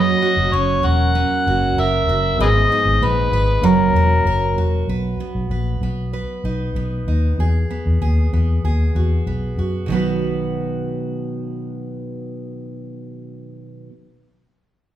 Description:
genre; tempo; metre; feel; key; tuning
acoustic pop; 96 BPM; 4/4; straight; B major; A4 = 440 Hz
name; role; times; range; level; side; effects
overdriven harmonica; melody; 0.0-4.6 s; G#4 to F#5; -18 LUFS; left 1 dB; none
overdriven reed electric piano; accompaniment; 0.0-4.9 s; A#3 to D#5; -27 LUFS; left 2 dB; fast tremolo
picked steel-string acoustic guitar; accompaniment; 0.0-13.9 s; G#2 to B4; -23 LUFS; right 4 dB; none
vintage muted fingered electric bass; bass; 0.0-13.9 s; E1 to F#2; -19 LUFS; left 1 dB; none
room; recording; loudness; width
wet large studio reverb, RT60 1.2 s; band playing live in one room; -16 LUFS; side -12 dB against mid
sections
0.0-4.9 A section; 4.9-9.9 B section; 9.9-12.4 C section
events
none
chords
0.0 F#; 2.4 G#m; 3.6 F#; 4.9 B; 7.4 Eadd9; 9.9 B

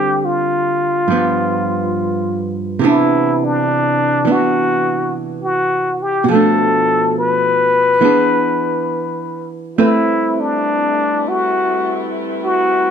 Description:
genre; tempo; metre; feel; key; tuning
jazz ballad; 69 BPM; 4/4; swing 68% on 8ths; unclear; A4 = 441 Hz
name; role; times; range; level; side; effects
trumpet with plunger mute; melody; 0.0-12.9 s; D4 to B4; -16 LUFS; left 2 dB; plate reverb
archtop guitar, miked and amplified; accompaniment; 0.0-12.9 s; G2 to B4; -17 LUFS; right 3 dB; none
mellow saxophone section; sustained chords; 9.8-12.9 s; G3 to B4; -24 LUFS; left 2 dB; none
room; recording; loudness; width
moderate club reverb, RT60 0.7 s; none; -14 LUFS; side -7 dB against mid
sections
0.0-12.9 A section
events
none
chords
0.0 Dm7; 1.1 G7; 2.8 Cmaj9; 6.3 Bm7b5; 8.0 E7; 9.8 Am9

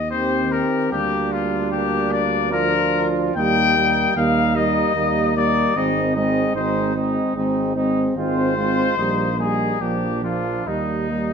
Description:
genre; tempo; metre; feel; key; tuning
classical, brass quintet; 74 BPM; 3/4; rubato; Eb major; A4 = 439 Hz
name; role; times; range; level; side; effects
clear trumpet; melody; 0.0-11.3 s; Eb4 to G5; -22 LUFS; left 6 dB; none
mellow tuba; bass; 0.0-11.3 s; Ab1 to Eb2; -24 LUFS; right 3 dB; none
mellow trumpet; second line; 0.1-11.3 s; D4 to G4; -27 LUFS; right 6 dB; none
clear French horn; accompaniment; 0.1-11.3 s; Bb3 to D4; -25 LUFS; left 3 dB; none
mellow trombone; accompaniment; 0.1-11.3 s; Eb3 to Ab3; -26 LUFS; right 4 dB; none
room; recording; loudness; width
wet stone room reverb, RT60 1.1 s; none; -18 LUFS; side -6 dB against mid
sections
0.0-11.3 A section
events
none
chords
0.0 Eb; 0.9 Bb/D; 3.4 Eb; 5.8 Ab; 9.0 Eb/Bb; 9.8 Bb; 10.7 Eb

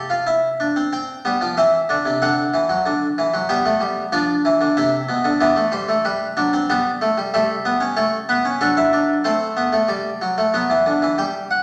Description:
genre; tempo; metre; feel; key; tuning
classical, baroque-style 3-part fugue for harpsichord; 94 BPM; 4/4; straight; C major; A4 = 439 Hz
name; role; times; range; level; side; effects
harpsichord; solo; 0.0-11.6 s; B2 to G5; -19 LUFS; equal; none
room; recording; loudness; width
wet recital hall reverb, RT60 1.4 s; none; -19 LUFS; mono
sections
0.9-11.2 A section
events
none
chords
0.0 C; 2.2 D7; 3.5 G7; 4.8 C; 6.1 G; 7.3 A7/G; 8.6 D7/F#; 9.9 G

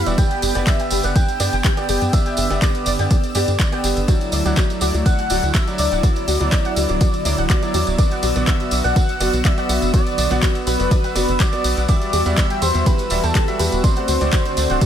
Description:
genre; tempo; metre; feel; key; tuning
progressive house; 123 BPM; 4/4; straight; G major; A4 = 442 Hz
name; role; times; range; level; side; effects
wide unison lead; melody; 0.0-14.9 s; A4 to G5; -25 LUFS; left 1 dB; wide subtle chorus, sidechain pumping, tape echo
soft synth bell; second line; 0.0-14.9 s; A5 to G6; -31 LUFS; right 1 dB; chorus, sidechain pumping, ping-pong delay
warm analog pad; sustained chords; 0.0-14.9 s; D3 to G4; -27 LUFS; equal; chorus, vintage 12-bit sampler grit, sidechain pumping
tight sequencer bass; bass; 0.0-14.8 s; D1 to G2; -21 LUFS; equal; sidechain pumping
twinkling granular texture; texture; 0.0-14.9 s; B5 to E6; -36 LUFS; left 1 dB; built-in reverb, sidechain pumping
bright baby grand piano; stabs; 0.1-14.9 s; F#3 to E5; -26 LUFS; right 1 dB; sidechain pumping, ping-pong delay
house drum kit; drums; 0.1-14.9 s; handclaps, hi-hat, ride cymbal; -27 LUFS; equal; none
tambourine; percussion; 0.1-14.9 s; none; -30 LUFS; right 4 dB; none
soft round pluck; arpeggios; 0.2-14.9 s; F#4 to G5; -27 LUFS; equal; ensemble chorus, sidechain pumping, ping-pong delay
electronic kick drum; drums; 0.2-14.9 s; none; -17 LUFS; equal; none
room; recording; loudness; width
digital ambience; none; -16 LUFS; side -9 dB against mid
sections
0.0-14.9 A section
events
none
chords
0.2 G; 4.1 Dadd9; 8.0 Bm; 11.9 Emadd9; 13.8 D7

